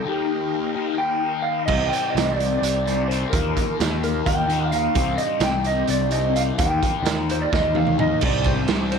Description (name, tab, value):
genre	psychedelic rock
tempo	257 BPM (eighths)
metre	7/8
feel	straight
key	C minor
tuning	A4 = 440 Hz
part	electric slide guitar	melody	0.0-9.0 s	G4 to G5	-24 LUFS	right 1 dB	slapback echo
part	tonewheel organ	sustained chords	0.0-9.0 s	C4 to G5	-34 LUFS	right 14 dB	slow rotary speaker, overdrive, chorus vibrato
part	fuzz guitar	riff	0.0-9.0 s	C3 to Eb4	-26 LUFS	left 13 dB	distortion, phaser
part	fuzz picked electric bass	bass	1.7-9.0 s	C2 to Eb2	-25 LUFS	equal	overdrive
part	raw garage drum kit	drums	1.7-9.0 s	crash cymbal, hi-hat, kick drum, ride cymbal, snare drum, toms	-24 LUFS	right 4 dB	none
room	light reverb, studio reverb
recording	1960s-style stereo with parts hard left and right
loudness	-19 LUFS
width	side -6 dB against mid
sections	0.0-1.7 A section; 1.7-8.2 B section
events	break 0.1-1.7; drum fill 7.5-8.2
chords	0.1 Ebadd9; 1.7 Cmadd9; 3.3 Ebadd9; 5.0 Cmadd9; 6.6 Ebadd9; 8.2 Cmadd9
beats	| 0.05 0.29 0.52 0.76 0.99 1.22 1.46 | 1.69 1.93 2.16 2.39 2.63 2.86 3.10 | 3.33 3.56 3.80 4.03 4.26 4.50 4.73 | 4.96 5.20 5.43 5.67 5.90 6.13 6.37 | 6.60 6.83 7.07 7.30 7.54 7.77 8.00 | 8.24 8.47 8.70 8.94